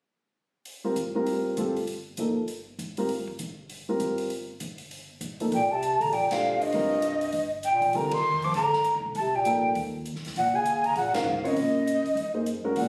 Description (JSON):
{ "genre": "modal jazz", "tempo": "198 BPM", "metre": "4/4", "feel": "swing 61% on 8ths", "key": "C dorian", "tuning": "A4 = 440 Hz", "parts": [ { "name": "swinging big-band drum kit", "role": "drums", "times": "0.7-12.8 s", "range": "hi-hat, kick drum, ride cymbal, snare drum", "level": "-44 LUFS", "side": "equal", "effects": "none" }, { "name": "warm upright piano", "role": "accompaniment", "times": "0.8-12.8 s", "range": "F3 to Db5", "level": "-31 LUFS", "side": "equal", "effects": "none" }, { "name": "upright bass", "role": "bass", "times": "1.0-12.9 s", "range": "G1 to Bb2", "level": "-42 LUFS", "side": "equal", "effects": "none" }, { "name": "breathy mellow jazz flute", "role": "melody", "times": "5.5-12.9 s", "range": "Eb5 to D6", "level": "-27 LUFS", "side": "equal", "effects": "none" }, { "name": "mellow bass clarinet", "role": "second line", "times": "5.5-12.9 s", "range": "Gb2 to F3", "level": "-32 LUFS", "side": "equal", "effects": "none" } ], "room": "moderate club reverb, RT60 0.6 s", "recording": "recorded on a phone in the room, studio reverb", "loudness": "-27 LUFS", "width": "mono", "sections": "0.7-5.5 A section; 5.5-12.9 B section", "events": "band accent 6.3, 8.1, 11.1", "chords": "0.7 C7(no3); 5.5 Cm11; 10.4 Ebm11" }